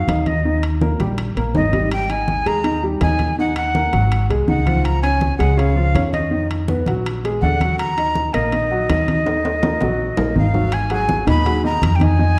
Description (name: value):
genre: Afro-Cuban jazz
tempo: 163 BPM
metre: 4/4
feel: straight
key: unclear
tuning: A4 = 438 Hz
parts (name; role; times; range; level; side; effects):
- breathy bright jazz flute; melody; 0.0-12.4 s; Eb5 to Cb6; -24 LUFS; equal; none
- bright baby grand piano; accompaniment; 0.0-12.4 s; Db3 to Eb5; -25 LUFS; equal; none
- upright bass; bass; 0.0-12.4 s; Ab1 to F2; -22 LUFS; equal; none
- congas; percussion; 0.1-12.4 s; none; -26 LUFS; equal; none
- timbales; percussion; 0.1-12.2 s; none; -30 LUFS; equal; none
room: moderate recital hall reverb, RT60 1.5 s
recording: dark, warm production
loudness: -18 LUFS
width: mono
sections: 0.0-10.7 A section; 10.7-12.4 B section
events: drum fill 9.3-10.7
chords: 0.4 Eb; 1.9 Absus2; 3.4 Ebm; 4.1 Ab6; 4.9 Db; 6.3 Bmaj7#11; 7.1 Bbaug7; 7.8 Ebm; 10.7 Abm7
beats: 0.08 | 0.45 0.81 1.18 1.55 | 1.91 2.28 2.65 3.02 | 3.38 3.75 4.12 4.48 | 4.85 5.22 5.58 5.95 | 6.32 6.69 7.05 7.42 | 7.79 8.15 8.52 8.89 | 9.26 9.62 9.99 10.36 | 10.73 11.09 11.46 11.83 | 12.20